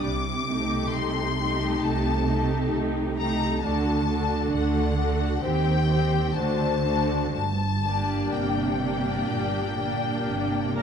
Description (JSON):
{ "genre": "classical, slow romantic movement for string orchestra", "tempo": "60-67 BPM", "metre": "4/4", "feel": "rubato", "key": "G minor", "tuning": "A4 = 440 Hz", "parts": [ { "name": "warm symphonic violin section", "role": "melody", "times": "0.0-10.8 s", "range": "F#5 to D6", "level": "-30 LUFS", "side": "left 7 dB", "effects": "none" }, { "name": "warm symphonic violin section", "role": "second line", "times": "0.0-10.8 s", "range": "F#4 to D5", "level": "-32 LUFS", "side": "left 5 dB", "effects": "none" }, { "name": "rich symphonic viola section", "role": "accompaniment", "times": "0.0-10.8 s", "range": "A3 to Bb4", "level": "-28 LUFS", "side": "right 1 dB", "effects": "none" }, { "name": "rich studio cello section", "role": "bass", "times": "0.0-10.8 s", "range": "G2 to Eb3", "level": "-30 LUFS", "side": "right 4 dB", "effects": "none" }, { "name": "warm symphonic double bass section", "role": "bass", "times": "0.0-10.8 s", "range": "G1 to Eb2", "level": "-28 LUFS", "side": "right 2 dB", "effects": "none" } ], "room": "wet scoring stage reverb, RT60 1.5 s", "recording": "dark, warm production", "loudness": "-23 LUFS", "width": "side -7 dB against mid", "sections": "0.0-10.8 A section", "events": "none", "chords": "0.0 Am7b5/C; 3.6 D; 5.4 Cm/Eb; 6.4 D7; 7.4 Gm" }